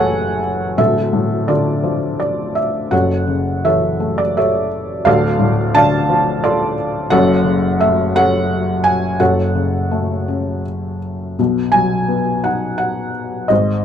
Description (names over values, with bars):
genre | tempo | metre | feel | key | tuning
classical, lyrical solo piano | 86 BPM | 3/4 | rubato | F# minor | A4 = 438 Hz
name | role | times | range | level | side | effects
felt-muted upright piano | solo | 0.0-13.8 s | D1 to A5 | -14 LUFS | equal | none
room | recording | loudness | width
moderate booth ambience, RT60 0.2 s | none | -14 LUFS | side -8 dB against mid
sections
0.0-11.4 A section; 11.4-13.8 B section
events
none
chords
0.0 F#m7; 0.8 Dm; 2.9 F#m7; 5.1 Dm; 7.1 F#m; 11.4 B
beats
0.10 | 0.79 1.49 2.20 | 2.93 3.65 4.37 | 5.06 5.75 6.44 | 7.12 7.81 8.50 | 9.20 9.92 10.66 | 11.39 12.10 12.81 | 13.50